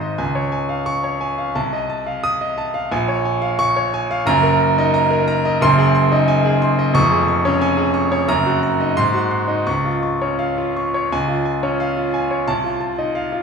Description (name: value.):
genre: classical, virtuoso piano study.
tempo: 88 BPM.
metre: 2/4.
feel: rubato.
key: Db major.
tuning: A4 = 440 Hz.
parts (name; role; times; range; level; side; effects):
bright grand piano; solo; 0.0-13.4 s; F1 to Eb6; -16 LUFS; equal; none.
room: moderate recital hall reverb, RT60 1.8 s.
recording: studio reverb.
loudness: -16 LUFS.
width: side -6 dB against mid.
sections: 0.2-11.1 A section; 11.1-13.4 A section.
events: none.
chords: 0.2 Db; 1.6 F7/C; 2.9 Bbm7; 4.3 Ebm/Gb; 5.6 Ab7/Gb; 6.9 Db/F; 8.3 Ebm/Gb; 9.0 Ab7; 9.7 Db; 12.5 F7/C.